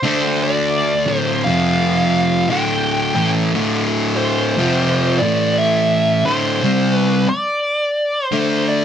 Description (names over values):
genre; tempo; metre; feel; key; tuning
metal; 58 BPM; 4/4; swing 63% on 8ths; D minor; A4 = 440 Hz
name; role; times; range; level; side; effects
fuzz lead guitar; melody; 0.0-8.8 s; C5 to G5; -19 LUFS; left 1 dB; wah, distortion
fuzz guitar; riff; 0.0-8.8 s; D2 to D4; -16 LUFS; equal; distortion
room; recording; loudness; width
moderate studio ambience, RT60 0.5 s; band playing live in one room; -15 LUFS; side -9 dB against mid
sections
0.0-8.8 A section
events
none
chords
0.0 D5; 1.5 F5; 2.5 Dm; 5.1 A5; 6.1 D5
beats
0.43 1.46 2.50 | 3.53 4.57 5.60 6.63 | 7.67 8.70